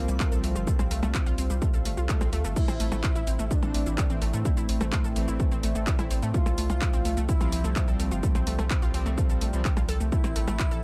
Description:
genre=melodic techno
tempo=127 BPM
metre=4/4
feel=straight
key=unclear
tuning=A4 = 438 Hz
part: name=expressive portamento lead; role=melody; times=0.0-10.8 s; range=Bb3 to F4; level=-40 LUFS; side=equal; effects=subtle chorus, sidechain pumping, delay
part: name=airy dreamy lead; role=second line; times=0.0-10.8 s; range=Bb4 to F5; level=-45 LUFS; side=equal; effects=none
part: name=deep dark ambient pad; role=sustained chords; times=0.0-10.8 s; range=F3 to G5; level=-40 LUFS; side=equal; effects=chorus, built-in reverb, sidechain pumping
part: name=analog pluck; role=arpeggios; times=0.0-10.8 s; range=E3 to A4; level=-38 LUFS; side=equal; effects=chorus, sidechain pumping, digital delay
part: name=analog synth brass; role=stabs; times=0.0-9.6 s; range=E3 to C4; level=-38 LUFS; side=equal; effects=chorus, sidechain pumping, digital delay
part: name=round analog bass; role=bass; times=0.0-10.8 s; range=G1 to A2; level=-31 LUFS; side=equal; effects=sidechain pumping
part: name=techno drum kit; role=drums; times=0.1-10.8 s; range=crash cymbal, handclaps, hi-hat, percussion blips, shaker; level=-36 LUFS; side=equal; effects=none
part: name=electronic kick drum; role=drums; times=0.2-10.7 s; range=none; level=-29 LUFS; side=equal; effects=none
part: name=swell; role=sound effects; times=1.9-2.6 s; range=none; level=-44 LUFS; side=equal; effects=none
room=little or no reverb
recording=none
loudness=-26 LUFS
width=mono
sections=0.0-10.8 A section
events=swell 1.9-2.6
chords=0.0 Csus4; 2.6 Am; 6.3 Csus4; 10.1 Am

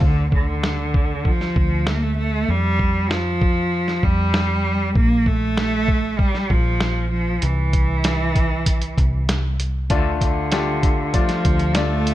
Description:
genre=piano-driven pop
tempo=97 BPM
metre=4/4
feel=straight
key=unclear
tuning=A4 = 440 Hz
part: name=warm cello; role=melody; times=0.0-12.1 s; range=D3 to Bb3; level=-22 LUFS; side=right 1 dB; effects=none
part: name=bright concert grand piano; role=accompaniment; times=0.0, 9.9-12.1 s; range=D3 to D5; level=-24 LUFS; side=left 5 dB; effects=none
part: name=vintage muted fingered electric bass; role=bass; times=0.0-12.1 s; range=Bb1 to F2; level=-23 LUFS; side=equal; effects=none
part: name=lo-fi sampler-style drum kit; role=drums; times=0.0-12.1 s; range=hi-hat, kick drum, snare drum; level=-20 LUFS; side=equal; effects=none
room=little or no reverb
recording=none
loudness=-17 LUFS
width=side -14 dB against mid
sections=0.0-12.1 A section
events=none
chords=0.0 Dm; 2.5 Fsus2; 5.0 Bb5; 7.4 C; 9.9 Dm

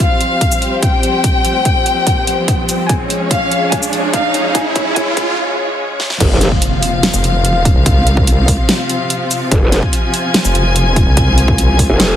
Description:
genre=heavy wobble dubstep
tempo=145 BPM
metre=4/4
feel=half-time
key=F minor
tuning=A4 = 440 Hz
part: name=rich chamber violin section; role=melody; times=0.0-5.3 s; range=F5 to Ab5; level=-17 LUFS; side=left 3 dB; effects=tape echo
part: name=warm studio string section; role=sustained chords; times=0.0-12.2 s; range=C3 to Ab5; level=-18 LUFS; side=left 1 dB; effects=sidechain pumping
part: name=dubstep drum kit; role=drums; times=0.0-12.1 s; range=crash cymbal, hi-hat, shaker, snare drum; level=-17 LUFS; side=equal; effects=none
part: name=electronic kick drum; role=drums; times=0.0-11.9 s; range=none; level=-15 LUFS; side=equal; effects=none
part: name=riser and impact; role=sound effects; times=0.0-7.9 s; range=none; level=-21 LUFS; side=right 1 dB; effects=none
part: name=growl bass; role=bass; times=6.2-6.5, 9.5-12.2 s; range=F1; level=-13 LUFS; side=equal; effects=chorus, overdrive
part: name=vowel-sweep wobble bass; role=bass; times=7.1-11.9 s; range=F1 to C2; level=-13 LUFS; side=equal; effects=chorus, overdrive
room=light reverb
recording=heavily compressed radio sound, high-pass filter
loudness=-11 LUFS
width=side -10 dB against mid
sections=0.0-6.2 A section; 6.2-12.2 B section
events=build-up 0.0-6.2; riser 0.0-5.4; drum fill 2.9-5.4, 6.0; break 5.4-6.2; drop 6.2-12.2; impact 6.2-7.9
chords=0.0 Fsus2; 2.9 Db; 6.2 F5

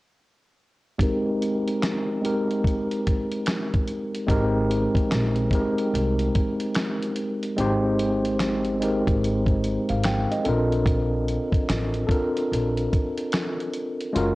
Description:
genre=lo-fi hip hop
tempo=73 BPM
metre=4/4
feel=swing 64% on 16ths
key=Ab major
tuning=A4 = 441 Hz
part: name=mellow tine electric piano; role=accompaniment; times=1.0-14.3 s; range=Ab3 to G5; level=-24 LUFS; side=equal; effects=medium stereo tremolo, cassette tape, low-pass filter
part: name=dusty soul sampler-style drum kit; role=drums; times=1.0-14.3 s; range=finger snaps, hi-hat, kick drum, snare drum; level=-26 LUFS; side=equal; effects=none
part: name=upright bass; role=bass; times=4.3-14.3 s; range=Gb1 to C2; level=-26 LUFS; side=equal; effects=tube saturation
room=light reverb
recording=worn, warbling old tape, cassette tape, warbly pitch drift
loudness=-22 LUFS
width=side -20 dB against mid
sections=1.0-4.3 A section; 4.3-14.3 B section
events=filter sweep on tine electric piano 1.0-4.3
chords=1.0 Abmaj9; 10.4 Bbmaj9

